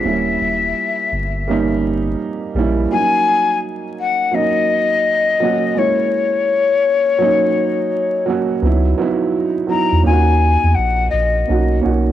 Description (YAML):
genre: lo-fi hip hop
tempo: 84 BPM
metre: 4/4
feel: swing 62% on 16ths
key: unclear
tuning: A4 = 440 Hz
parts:
  - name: breathy mellow jazz flute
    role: melody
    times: 0.0-11.8 s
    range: C#5 to A#5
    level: -16 LUFS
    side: left 5 dB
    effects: cassette tape
  - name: dark upright piano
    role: accompaniment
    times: 0.0-12.1 s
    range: F#3 to F#4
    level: -19 LUFS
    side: right 5 dB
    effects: cassette tape
  - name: soft dub sub bass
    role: bass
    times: 0.0-2.9, 8.6-12.1 s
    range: D#1 to E2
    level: -17 LUFS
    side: equal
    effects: none
room: light reverb, small room ambience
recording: home recording on cassette, vinyl crackle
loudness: -14 LUFS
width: side -12 dB against mid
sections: 0.0-8.6 A section; 8.6-12.1 B section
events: none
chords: 0.0 D#7b9; 2.9 F#69; 5.8 A#m7b5; 7.2 D#m7; 8.6 C#m11; 10.0 D#m7; 11.5 Bmaj7